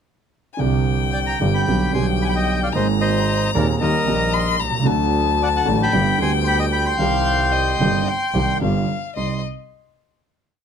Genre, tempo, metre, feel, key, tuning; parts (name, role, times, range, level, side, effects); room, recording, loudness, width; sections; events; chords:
tango; 112 BPM; 4/4; rubato; C minor; A4 = 438 Hz
rich violin; second line; 0.5-9.4 s; Eb5 to C6; -24 LUFS; left 9 dB
warm concert grand piano; accompaniment; 0.6-9.4 s; Eb1 to Ab4; -21 LUFS; right 2 dB
clear double bass; bass; 0.6-9.4 s; G1 to Eb2; -23 LUFS; right 1 dB
bandoneon; melody; 1.1-9.4 s; Bb4 to C6; -22 LUFS; equal; plate reverb
light reverb; -17 LUFS; side -7 dB against mid
0.0-0.6 pickup bar; 0.6-9.2 A section; 9.2-10.6 final chord
0.0 N.C.; 0.6 Csus2; 1.7 G/B; 2.7 Abadd9; 3.8 Eb; 4.9 D; 5.9 G; 7.0 Cm; 8.6 G7; 9.2 Cm